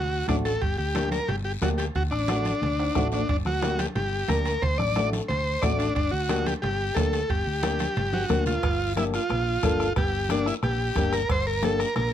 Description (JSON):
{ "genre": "latin, cumbia", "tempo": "180 BPM", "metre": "4/4", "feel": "straight", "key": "G harmonic minor, G dorian from 8.6 s", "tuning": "A4 = 440 Hz", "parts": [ { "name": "overdriven combo organ", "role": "melody", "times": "0.0-12.1 s", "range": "D4 to D5", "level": "-27 LUFS", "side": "equal", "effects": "none" }, { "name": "hollow-body short-scale fingered electric bass", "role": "bass", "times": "0.0-12.1 s", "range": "G1 to D2", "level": "-29 LUFS", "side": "equal", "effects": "none" }, { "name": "flamenco guitar", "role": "accompaniment", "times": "0.3-11.9 s", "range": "A3 to Bb4", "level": "-28 LUFS", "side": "left 4 dB", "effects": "none" }, { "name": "bombo", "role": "percussion", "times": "0.3-12.1 s", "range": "none", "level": "-30 LUFS", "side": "right 1 dB", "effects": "none" }, { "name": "congas", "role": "percussion", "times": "0.3-12.1 s", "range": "none", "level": "-33 LUFS", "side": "right 2 dB", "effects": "none" }, { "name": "guiro", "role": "percussion", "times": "0.3-12.1 s", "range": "none", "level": "-41 LUFS", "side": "left 6 dB", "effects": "none" }, { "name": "timbales and cowbell", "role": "percussion", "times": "0.3-12.1 s", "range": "none", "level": "-38 LUFS", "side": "right 6 dB", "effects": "none" } ], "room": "light reverb", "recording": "none", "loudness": "-23 LUFS", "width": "side -10 dB against mid", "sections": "0.0-8.6 A section; 8.6-12.1 B section", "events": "drum fill 2.8-3.3, 8.1-8.6; nylon-string guitar fill 8.1-8.6", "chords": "0.0 D; 0.6 Gm; 2.0 D; 3.3 Gm; 4.6 D7; 6.0 Gm", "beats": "0.29 | 0.62 0.96 1.29 1.62 | 1.96 2.29 2.62 2.96 | 3.29 3.63 3.96 4.29 | 4.63 4.96 5.29 5.63 | 5.96 6.29 6.63 6.96 | 7.30 7.63 7.96 8.30 | 8.63 8.96 9.30 9.63 | 9.96 10.30 10.63 10.96 | 11.29 11.63 11.96" }